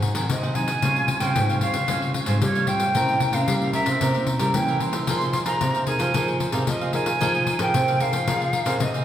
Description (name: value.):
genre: samba and choro.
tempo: 113 BPM.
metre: 4/4.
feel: straight.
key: F minor.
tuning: A4 = 440 Hz.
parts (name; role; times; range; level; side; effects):
cavaquinho; accompaniment; 0.0-9.0 s; Eb4 to Gb5; -30 LUFS; right 1 dB; none.
nylon-string guitar; accompaniment; 0.0-9.0 s; Ab2 to Bb4; -30 LUFS; left 2 dB; none.
nylon-string guitar; bass; 0.0-9.0 s; Ab2 to G3; -26 LUFS; right 1 dB; none.
pandeiro; percussion; 0.0-9.0 s; none; -26 LUFS; left 3 dB; none.
concert flute; melody; 0.3-9.0 s; Db5 to C6; -25 LUFS; right 1 dB; none.
room: wet recital hall reverb, RT60 1.7 s.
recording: recorded in a church or concert hall.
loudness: -20 LUFS.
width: side -10 dB against mid.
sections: 0.0-9.0 A section.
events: none.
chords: 0.0 Ab7; 0.8 Dbmaj7#11; 3.0 C7b9; 5.1 Fm7.